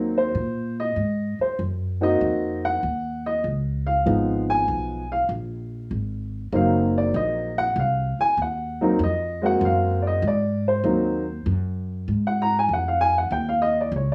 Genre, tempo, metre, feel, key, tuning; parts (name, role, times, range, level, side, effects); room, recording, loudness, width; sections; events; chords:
jazz; 97 BPM; 4/4; swing 69% on 8ths; Ab mixolydian; A4 = 440 Hz
dark upright piano; melody; 0.0-14.1 s; F3 to Bb5; -24 LUFS; equal
upright bass; bass; 0.0-14.1 s; Gb1 to Bb2; -28 LUFS; equal
moderate studio reverb, RT60 0.6 s; studio ambience; -23 LUFS; mono
0.0-14.1 A section
upright piano solo 0.0-14.1
0.0 Ab7; 3.4 Db7; 5.9 Ab7; 13.3 Eb7